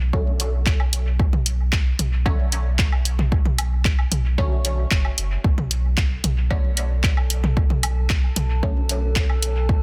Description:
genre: dub techno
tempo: 113 BPM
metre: 4/4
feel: straight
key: B minor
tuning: A4 = 441 Hz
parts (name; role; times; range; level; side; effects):
- pure sine sub bass; bass; 0.0-9.8 s; F#1 to B1; -25 LUFS; equal; sidechain pumping
- filtered dub chord stab; stabs; 0.1-8.8 s; D3 to C#4; -34 LUFS; equal; phaser, dub echo
- electronic kick drum; drums; 0.1-9.8 s; none; -22 LUFS; equal; overdrive
- punchy analog drum machine; drums; 0.4-9.5 s; handclaps, hi-hat; -28 LUFS; equal; dub echo
- electronic woodblock and toms; percussion; 0.8-9.4 s; none; -30 LUFS; equal; sidechain pumping on perc, sidechain pumping on toms, dub echo
- metallic inharmonic drone; texture; 6.9-9.8 s; A4; -37 LUFS; equal; chorus, built-in reverb, phaser, sidechain pumping
room: little or no reverb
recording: dense, heavily limited modern master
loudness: -21 LUFS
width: mono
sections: 0.0-9.8 A section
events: none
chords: 0.0 B7(no3)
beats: 0.13 0.66 | 1.20 1.73 2.26 2.79 | 3.32 3.85 4.38 4.91 | 5.44 5.97 6.50 7.04 | 7.57 8.10 8.63 9.16 | 9.69

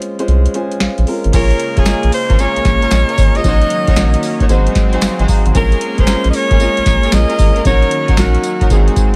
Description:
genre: R&B, new jack swing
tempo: 114 BPM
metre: 4/4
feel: swing 66% on 16ths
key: Bb minor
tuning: A4 = 435 Hz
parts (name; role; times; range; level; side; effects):
- warm concert grand piano; accompaniment; 0.0-9.2 s; Gb3 to C6; -23 LUFS; equal; none
- booming analog drum machine; drums; 0.0-9.2 s; crash cymbal, hi-hat, kick drum, snare drum, tambourine; -17 LUFS; equal; none
- round analog bass; bass; 0.3-8.9 s; F1 to C2; -16 LUFS; equal; none
- lush unison pad; sustained chords; 1.3-9.2 s; Db3 to Db4; -26 LUFS; equal; chorus
- warm studio string section; stabs; 1.3-9.2 s; C4 to Db5; -25 LUFS; equal; none
- bright alto saxophone; melody; 1.4-8.9 s; Gb4 to Eb5; -20 LUFS; equal; none
- group handclap; percussion; 1.9-8.3 s; none; -34 LUFS; equal; none
room: studio reverb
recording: none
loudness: -13 LUFS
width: mono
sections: 0.0-1.3 A section; 1.3-9.2 B section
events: break 0.0-1.3; grand piano fill 0.3-1.3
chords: 0.0 Dbmaj7; 1.3 Bbm7; 3.4 Ebm7/Bb; 4.5 Ab7; 5.5 Bbm7; 7.7 Ebm7/Bb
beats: 0.28 0.81 | 1.33 1.86 2.39 2.91 | 3.44 3.96 4.49 5.02 | 5.54 6.07 6.60 7.12 | 7.65 8.18 8.70

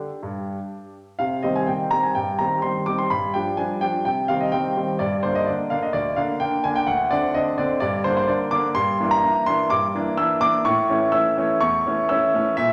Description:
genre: classical-period piano sonatina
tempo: 126 BPM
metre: 4/4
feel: straight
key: C minor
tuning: A4 = 440 Hz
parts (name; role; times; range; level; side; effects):
- warm concert grand piano; solo; 0.0-12.7 s; D2 to E6; -22 LUFS; equal; none
room: wet recital hall reverb, RT60 1.5 s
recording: none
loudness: -22 LUFS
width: mono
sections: 0.0-1.2 A section; 1.2-12.7 B section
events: none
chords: 0.0 G5; 1.2 Cm; 3.1 G5; 4.1 Cm; 5.0 Gm; 6.9 D7b9; 7.8 Gm; 8.8 Em7b5/G; 10.7 A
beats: 0.23 0.71 | 1.20 1.68 2.16 2.64 | 3.11 3.59 4.06 4.53 | 5.00 5.47 5.94 6.41 | 6.88 7.35 7.82 8.29 | 8.77 9.24 9.71 10.19 | 10.66 11.14 11.62 12.10 | 12.58

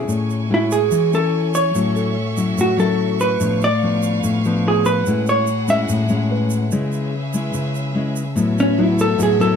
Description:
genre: bossa nova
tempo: 145 BPM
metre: 4/4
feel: straight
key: A major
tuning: A4 = 442 Hz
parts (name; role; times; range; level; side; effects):
- nylon-string guitar; accompaniment; 0.0-9.6 s; A2 to G#4; -18 LUFS; left 2 dB; none
- warm concert grand piano; accompaniment; 0.0-3.4, 6.3-6.9 s; E3 to E5; -33 LUFS; right 4 dB; none
- rich studio violin section; sustained chords; 0.0-9.6 s; B3 to C#6; -30 LUFS; right 2 dB; none
- tube shaker; percussion; 0.1-9.6 s; none; -33 LUFS; right 8 dB; none
- vintage hollow-body jazz guitar; melody; 0.5-9.6 s; C#4 to E5; -18 LUFS; right 1 dB; none
room: light reverb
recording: close, detailed microphones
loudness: -16 LUFS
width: side -7 dB against mid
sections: 0.1-9.6 A section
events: hollow-body jazz guitar solo 0.1-9.6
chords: 0.1 Amaj7; 1.7 A6; 3.4 C#7b9/A; 5.1 F#m9/A; 6.7 C#m7; 8.4 B7sus4/A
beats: | 0.09 0.50 0.92 1.33 | 1.74 2.16 2.57 2.99 | 3.40 3.81 4.23 4.64 | 5.06 5.47 5.89 6.30 | 6.71 7.13 7.54 7.96 | 8.37 8.79 9.20

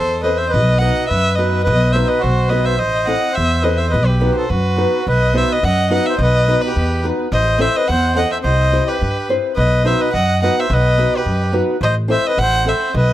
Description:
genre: balkan folk, Balkan wedding band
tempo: 106 BPM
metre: 2/4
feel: swing 53% on 16ths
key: B phrygian dominant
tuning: A4 = 441 Hz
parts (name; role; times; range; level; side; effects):
- rich violin; melody; 0.0-13.1 s; B4 to F#5; -20 LUFS; left 1 dB; tape echo
- accordion; second line; 0.0-13.1 s; F#4 to D#5; -20 LUFS; right 2 dB; none
- upright bass; bass; 0.0-13.1 s; A1 to G2; -17 LUFS; equal; none
- nylon-string guitar; accompaniment; 0.2-12.9 s; B3 to C5; -20 LUFS; left 1 dB; none
room: light reverb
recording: dry, gritty hardware recording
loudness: -14 LUFS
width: side -13 dB against mid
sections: 0.0-5.1 A section; 5.1-13.1 B section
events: none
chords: 0.0 Am; 0.5 B; 2.8 Am; 3.9 B; 7.3 Am; 8.4 C; 9.6 B; 11.8 Am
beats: | 0.54 1.10 | 1.67 2.24 | 2.80 3.37 | 3.93 4.50 | 5.07 5.63 | 6.19 6.76 | 7.32 7.89 | 8.45 9.01 | 9.57 10.13 | 10.70 11.26 | 11.82 12.38 | 12.93

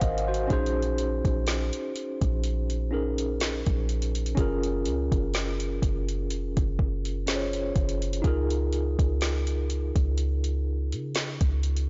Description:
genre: contemporary R&B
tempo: 62 BPM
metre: 4/4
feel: swing 54% on 16ths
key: Bb minor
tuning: A4 = 440 Hz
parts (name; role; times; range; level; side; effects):
- tine electric piano; accompaniment; 0.0-11.9 s; C4 to Ab5; -33 LUFS; equal; medium tremolo
- soft 808-style bass; bass; 0.0-11.9 s; F1 to Db3; -31 LUFS; equal; none
- smooth R&B drum kit; drums; 0.0-11.9 s; hi-hat, kick drum, snare drum; -31 LUFS; equal; none
room: digital ambience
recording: blown-out, overdriven recording, overdrive, nothing above 7.6 kHz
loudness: -27 LUFS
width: mono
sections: 0.0-11.9 A section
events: none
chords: 0.0 Ab9; 0.5 Bbm11; 4.4 Gbmaj9; 8.2 Db6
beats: | 0.50 1.47 2.44 3.40 | 4.37 5.34 6.31 7.28 | 8.24 9.21 10.18 11.15

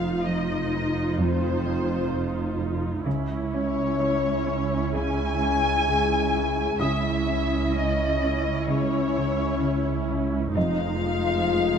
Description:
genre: cinematic, suspense film score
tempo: 64 BPM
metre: 4/4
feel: straight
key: unclear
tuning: A4 = 440 Hz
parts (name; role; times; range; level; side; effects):
- muted chamber violin section; melody; 0.0-11.8 s; C5 to Ab5; -29 LUFS; left 3 dB; none
- muted chamber viola section; accompaniment; 0.0-11.8 s; Ab3 to F4; -30 LUFS; right 2 dB; none
- mellow French horn section; sustained chords; 0.0-11.8 s; C4 to Eb5; -29 LUFS; left 6 dB; none
- muted chamber cello section; riff; 0.0-11.8 s; F2 to Db4; -32 LUFS; right 1 dB; none
- muted chamber cello section; bass; 0.0-11.8 s; Db2 to F2; -32 LUFS; right 4 dB; none
- muted chamber double bass section; bass; 0.0-11.8 s; F1 to Db2; -30 LUFS; right 3 dB; none
- felt-muted upright piano; texture; 0.0-11.8 s; Eb5 to Eb6; -36 LUFS; left 3 dB; none
room: moderate scoring stage reverb, RT60 1.9 s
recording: none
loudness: -22 LUFS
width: side -7 dB against mid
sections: 0.0-11.8 A section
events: none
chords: 0.0 Fm7; 3.1 Dbm; 10.6 Fm7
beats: 0.24 1.18 2.12 | 3.06 3.99 4.93 5.87 | 6.81 7.74 8.68 9.62 | 10.56 11.49

